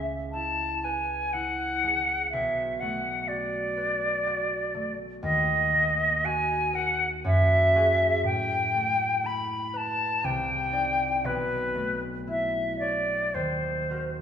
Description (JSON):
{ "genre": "classical, impressionist duo for flute and harp", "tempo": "61 BPM", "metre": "3/4", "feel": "uneven beats, rubato", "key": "unclear", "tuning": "A4 = 440 Hz", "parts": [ { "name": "silver concert flute", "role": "melody", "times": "0.0-14.2 s", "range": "B4 to B5", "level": "-25 LUFS", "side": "left 1 dB", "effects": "none" }, { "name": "concert harp", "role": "accompaniment", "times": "0.0-14.2 s", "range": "B1 to D5", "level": "-31 LUFS", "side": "right 1 dB", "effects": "none" } ], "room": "wet recital hall reverb, RT60 1.8 s", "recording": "recorded in a church or concert hall", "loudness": "-24 LUFS", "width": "side -8 dB against mid", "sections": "0.0-14.2 A section", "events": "none", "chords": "0.0 C#m7; 2.3 Bm7; 5.2 D#m; 7.3 F#sus2; 8.3 Asus2; 10.2 Cmadd9; 11.2 Bm11; 13.3 D#m6", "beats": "0.34 1.33 | 2.33 3.29 4.26 | 5.24 6.24 7.25 | 8.26 9.25 10.24 | 11.25 12.28 13.35" }